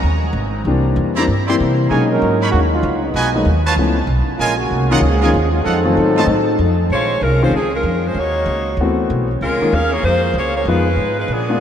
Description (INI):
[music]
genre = jazz, big band swing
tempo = 192 BPM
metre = 4/4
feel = swing 63% on 8ths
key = Bb minor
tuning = A4 = 440 Hz
[part]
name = upright bass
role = bass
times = 0.0-11.6 s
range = Ab1 to C3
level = -18 LUFS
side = equal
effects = none
[part]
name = warm concert grand piano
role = accompaniment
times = 0.7-11.6 s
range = Eb3 to F#4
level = -20 LUFS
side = left 3 dB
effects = none
[part]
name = clear trumpet section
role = stabs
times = 1.2-6.2 s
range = D#4 to C6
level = -22 LUFS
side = right 3 dB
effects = none
[part]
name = warm trombone section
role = second line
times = 1.9-6.8 s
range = Db3 to A#4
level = -21 LUFS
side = right 1 dB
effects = none
[part]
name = warm saxophone section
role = melody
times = 6.9-11.6 s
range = F3 to F5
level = -18 LUFS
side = equal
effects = none
[sound]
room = wet cathedral reverb, RT60 5.4 s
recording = in a vast, echoing space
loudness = -14 LUFS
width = side -9 dB against mid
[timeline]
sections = 0.0-6.9 A section; 6.9-11.6 B section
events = trombone section solo 0.0-6.9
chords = 0.0 Gbsus2 (rootless); 0.7 C9; 1.9 Bmaj13; 3.2 Abm7; 3.8 Db7alt; 4.4 Gbmaj13; 5.7 F7b9; 6.9 Bbm9; 8.2 Ebm7; 8.8 D13; 9.4 Db6; 10.7 Fm7b5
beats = 0.02 0.34 | 0.65 0.96 1.28 1.59 | 1.90 2.21 2.53 2.84 | 3.15 3.47 3.78 4.09 | 4.41 4.72 5.03 5.35 | 5.66 5.97 6.29 6.60 | 6.91 7.23 7.54 7.85 | 8.17 8.48 8.79 9.11 | 9.42 9.73 10.04 10.36 | 10.67 10.98 11.30